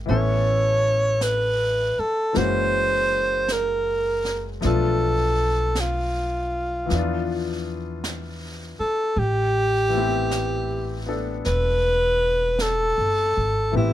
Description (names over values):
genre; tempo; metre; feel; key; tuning
jazz ballad; 53 BPM; 4/4; swing 66% on 8ths; unclear; A4 = 439 Hz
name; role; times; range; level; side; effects
clear baby grand piano; accompaniment; 0.0-13.9 s; E3 to A4; -28 LUFS; left 5 dB; none
upright bass; bass; 0.0-13.9 s; E1 to E2; -26 LUFS; right 1 dB; none
breathy alto saxophone; melody; 0.1-13.9 s; E4 to C#5; -22 LUFS; equal; none
jazz brush drum kit; drums; 0.1-13.9 s; brushed snare drum, hi-hat, snare drum; -35 LUFS; right 2 dB; none
room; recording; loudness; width
little or no reverb; close, detailed microphones; -20 LUFS; side -12 dB against mid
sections
0.0-13.9 A section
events
none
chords
0.1 Aadd9; 2.4 F#7; 4.6 Bm7b5; 6.9 E5; 9.2 Am9